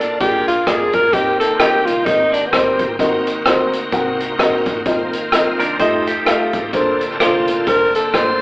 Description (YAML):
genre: uptempo gospel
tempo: 129 BPM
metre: 4/4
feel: swing 58% on 8ths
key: Bb major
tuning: A4 = 440 Hz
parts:
  - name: breathy tenor saxophone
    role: melody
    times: 0.0-2.9, 7.2-8.4 s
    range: Cb4 to C5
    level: -15 LUFS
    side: equal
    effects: none
  - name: bright tonewheel organ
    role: sustained chords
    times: 0.0-8.4 s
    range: D3 to A4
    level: -22 LUFS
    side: equal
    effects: slow rotary speaker, chorus vibrato
  - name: upright bass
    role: bass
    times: 0.0-8.4 s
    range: A1 to F2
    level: -35 LUFS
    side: equal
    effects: none
  - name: swinging big-band drum kit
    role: drums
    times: 0.0-8.3 s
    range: hi-hat, kick drum, rim click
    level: -20 LUFS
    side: equal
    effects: none
  - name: dark grand piano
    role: accompaniment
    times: 0.2-8.4 s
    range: Bb2 to Gb5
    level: -19 LUFS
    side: left 1 dB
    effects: none
  - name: semi-hollow electric guitar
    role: second line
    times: 5.6-6.7 s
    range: D4 to C5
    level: -20 LUFS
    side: right 1 dB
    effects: none
room: moderate large studio reverb, RT60 1.2 s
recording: band playing live in one room, AM radio sound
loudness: -13 LUFS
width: side -23 dB against mid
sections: 0.0-8.4 A section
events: none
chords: 0.2 Bb7; 1.1 Eb6; 3.0 Ebm6; 4.9 F7sus4; 5.8 F9; 6.7 Bbmaj9